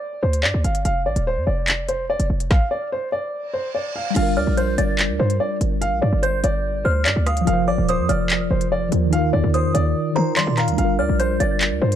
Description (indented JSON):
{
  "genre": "hip hop, drill",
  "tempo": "145 BPM",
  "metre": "4/4",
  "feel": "half-time",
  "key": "G minor",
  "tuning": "A4 = 440 Hz",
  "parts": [
    { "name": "warm upright piano", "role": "melody", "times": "0.0-12.0 s", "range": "C5 to F5", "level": "-24 LUFS", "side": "equal", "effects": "none" },
    { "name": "short 808-style bass", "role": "bass", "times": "0.2-12.0 s", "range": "Eb1 to G3", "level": "-21 LUFS", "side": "equal", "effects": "none" },
    { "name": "drill drum kit", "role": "drums", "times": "0.3-12.0 s", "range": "crash cymbal, handclaps, hi-hat, kick drum, rim click, snare drum", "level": "-22 LUFS", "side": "equal", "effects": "none" },
    { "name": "reverse cymbal", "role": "sound effects", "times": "3.5-4.2 s", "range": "none", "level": "-32 LUFS", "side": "right 7 dB", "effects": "none" },
    { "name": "mellow tine electric piano", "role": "accompaniment", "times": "4.1-12.0 s", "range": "Eb3 to C5", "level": "-23 LUFS", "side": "left 1 dB", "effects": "medium stereo tremolo" },
    { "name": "delicate synth tine bell", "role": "second line", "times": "4.4-11.6 s", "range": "Bb5 to A6", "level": "-28 LUFS", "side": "right 2 dB", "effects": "chorus, phaser, digital delay" }
  ],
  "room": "little or no reverb",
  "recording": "dark, warm production",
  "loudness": "-18 LUFS",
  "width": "side -10 dB against mid",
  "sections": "0.0-4.2 A section; 4.2-12.0 B section",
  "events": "reverse cymbal 3.5-4.2",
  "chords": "0.0 G5; 0.9 F5; 2.5 N.C.; 4.2 Gm7; 7.5 Fsus4; 9.1 Ebsus2; 10.8 Gm7"
}